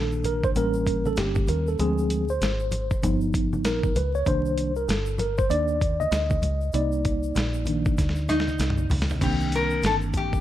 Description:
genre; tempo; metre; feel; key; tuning
hip hop, jazz-hop; 97 BPM; 4/4; swing 61% on 16ths; unclear; A4 = 441 Hz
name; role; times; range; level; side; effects
mellow tine electric piano; accompaniment; 0.0-10.4 s; D3 to Eb5; -26 LUFS; equal; medium stereo tremolo
deep dub fingered electric bass; bass; 0.0-10.4 s; G1 to Eb2; -27 LUFS; equal; none
egg shaker and congas; percussion; 0.1-10.4 s; none; -36 LUFS; left 2 dB; none
dusty soul sampler-style drum kit; drums; 0.2-10.4 s; crash cymbal, hi-hat, kick drum, snare drum, toms; -27 LUFS; equal; overdrive
metal-body resonator slide guitar; melody; 8.3-10.4 s; Eb4 to Bb4; -26 LUFS; left 2 dB; none
room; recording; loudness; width
light reverb; vinyl crackle; -22 LUFS; side -12 dB against mid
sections
0.0-9.2 A section; 9.2-10.4 B section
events
tine electric piano solo 0.0-9.2; drum fill 8.0-9.2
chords
0.0 Cm9 (rootless); 0.6 A7b9; 1.8 Dm7b5; 3.0 G7alt; 4.3 Cm9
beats
0.55 1.17 | 1.79 2.41 3.03 3.65 | 4.26 4.88 5.50 6.12 | 6.74 7.36 7.97 8.59 | 9.21 9.83

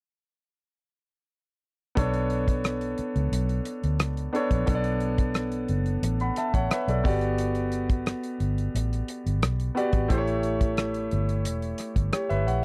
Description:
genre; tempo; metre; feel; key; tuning
lush 1970s-style soul; 89 BPM; 4/4; straight; B minor; A4 = 445 Hz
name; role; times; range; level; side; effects
clear concert grand piano; accompaniment; 2.0-12.6 s; A3 to B5; -30 LUFS; equal; none
vintage muted fingered electric bass; bass; 2.0-12.6 s; E1 to D2; -30 LUFS; equal; none
damped 70s drum kit; drums; 2.0-12.6 s; hi-hat, kick drum, rim click; -29 LUFS; equal; none
room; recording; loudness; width
little or no reverb; dry, close 1970s-style studio recording; -27 LUFS; mono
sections
2.0-12.6 A section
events
none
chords
2.0 Bm9; 7.1 Gmaj7; 10.1 A7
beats
| 1.98 2.65 3.33 4.01 | 4.68 5.36 6.04 6.71 | 7.39 8.07 8.74 9.42 | 10.10 10.78 11.45 12.13

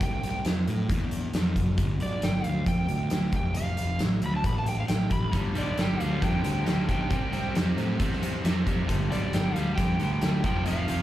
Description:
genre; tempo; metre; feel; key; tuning
blues rock power trio and southern rock; 135 BPM; 4/4; straight; G mixolydian; A4 = 440 Hz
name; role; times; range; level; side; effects
overdriven slide guitar; melody; 0.0-11.0 s; D5 to B5; -34 LUFS; right 2 dB; plate reverb, slapback echo
fuzz picked electric bass; bass; 0.0-11.0 s; F1 to A2; -29 LUFS; equal; overdrive
oversized low-tuned drum kit; drums; 0.0-11.0 s; hi-hat, kick drum, snare drum; -28 LUFS; equal; none
overdriven electric guitar; riff; 5.3-11.0 s; F2 to C4; -31 LUFS; equal; none
room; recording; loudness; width
light reverb; live gig heard through the venue's PA, club reverb; -24 LUFS; side -14 dB against mid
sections
0.0-11.0 A section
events
none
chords
0.0 C; 1.8 G; 3.3 F; 5.3 G; 7.1 C; 8.9 G; 10.4 F5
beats
| 0.01 0.46 0.90 1.34 | 1.78 2.23 2.67 3.12 | 3.56 4.00 4.45 4.89 | 5.34 5.78 6.22 6.67 | 7.11 7.56 8.00 8.45 | 8.89 9.34 9.78 10.22 | 10.67

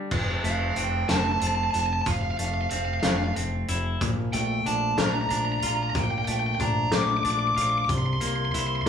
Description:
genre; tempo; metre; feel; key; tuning
post-rock; 62 BPM (dotted quarters); 6/8; straight; unclear; A4 = 440 Hz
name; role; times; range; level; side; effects
semi-hollow electric guitar; arpeggios; 0.0-8.9 s; Bb2 to F4; -31 LUFS; left 2 dB; spring reverb
growling fingered electric bass; bass; 0.1-8.9 s; F1 to C2; -29 LUFS; equal; overdrive
loose indie drum kit; drums; 0.1-8.9 s; crash cymbal, hi-hat, kick drum, snare drum; -28 LUFS; left 1 dB; none
smooth overdriven lead guitar; melody; 0.5-8.9 s; F5 to D6; -27 LUFS; right 1 dB; none
room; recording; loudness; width
moderate large studio reverb, RT60 0.9 s; band playing live in one room, small room ambience; -23 LUFS; side -7 dB against mid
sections
0.1-8.9 A section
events
none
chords
0.1 F; 4.0 Bbmaj7; 7.9 C7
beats
| 0.12 1.09 | 2.07 3.04 | 4.01 4.98 | 5.95 6.92 | 7.89 8.86

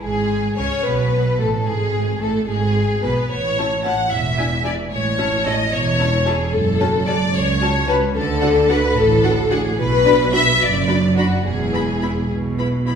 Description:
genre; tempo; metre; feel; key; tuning
quick classical-period movement for string orchestra; 74 BPM (dotted quarters); 6/8; rubato; unclear; A4 = 440 Hz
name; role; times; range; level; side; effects
rich symphonic violin section; melody; 0.0-13.0 s; G#4 to B5; -28 LUFS; left 4 dB; none
rich symphonic violin section; second line; 0.0-12.3 s; F#4 to F#5; -19 LUFS; left 3 dB; none
rich symphonic viola section; accompaniment; 0.0-12.9 s; G#3 to F#4; -26 LUFS; right 1 dB; none
rich symphonic cello section; bass; 0.0-13.0 s; C#2 to D3; -23 LUFS; right 3 dB; none
warm symphonic double bass section; bass; 0.0-13.0 s; E1 to D2; -23 LUFS; right 3 dB; none
room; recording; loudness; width
wet recital hall reverb, RT60 1.5 s; recorded in a church or concert hall; -16 LUFS; side -7 dB against mid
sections
0.0-13.0 A section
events
none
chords
0.0 G#sus4; 0.8 Asus2; 1.7 G#m; 3.3 A; 4.1 E7(no3); 4.9 A; 6.5 F#m; 8.2 D; 9.8 Bm; 11.4 E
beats
| 0.02 0.85 | 1.67 2.48 | 3.30 4.11 | 4.92 5.72 | 6.53 7.34 | 8.15 8.97 | 9.78 10.61 | 11.45 12.30

